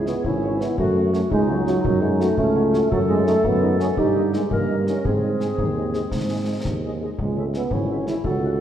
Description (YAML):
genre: military-style march for wind band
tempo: 112 BPM (dotted quarters)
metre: 6/8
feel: straight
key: C# minor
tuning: A4 = 440 Hz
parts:
  - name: mellow woodwind section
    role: second line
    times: 0.0-8.6 s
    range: C#4 to A#4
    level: -26 LUFS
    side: left 2 dB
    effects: none
  - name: warm euphonium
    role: second line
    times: 0.0-8.6 s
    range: F#3 to F#4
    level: -23 LUFS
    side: right 2 dB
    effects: none
  - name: clear tuba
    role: bass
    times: 0.0-8.6 s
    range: G#1 to G#2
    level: -24 LUFS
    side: right 1 dB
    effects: none
  - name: mellow trumpet section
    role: melody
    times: 0.1-8.5 s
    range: C#5 to F#5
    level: -44 LUFS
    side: equal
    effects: none
  - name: mellow French horn section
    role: accompaniment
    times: 0.1-8.5 s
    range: G#3 to G#4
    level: -32 LUFS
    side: left 5 dB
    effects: none
  - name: concert snare drum and concert bass drum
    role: drums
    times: 0.1-8.4 s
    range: none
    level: -29 LUFS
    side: left 2 dB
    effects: none
room: wet concert hall reverb, RT60 2.6 s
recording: dark, warm production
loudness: -19 LUFS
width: side -10 dB against mid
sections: 0.0-8.6 A section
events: none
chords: 0.0 C#m; 0.8 F#m; 2.9 D#dim/F#; 4.0 D#7/G; 5.1 G#; 7.2 C#m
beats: 0.24 | 0.78 1.31 | 1.85 2.38 | 2.92 3.45 | 3.98 4.52 | 5.05 5.59 | 6.12 6.65 | 7.19 7.72 | 8.26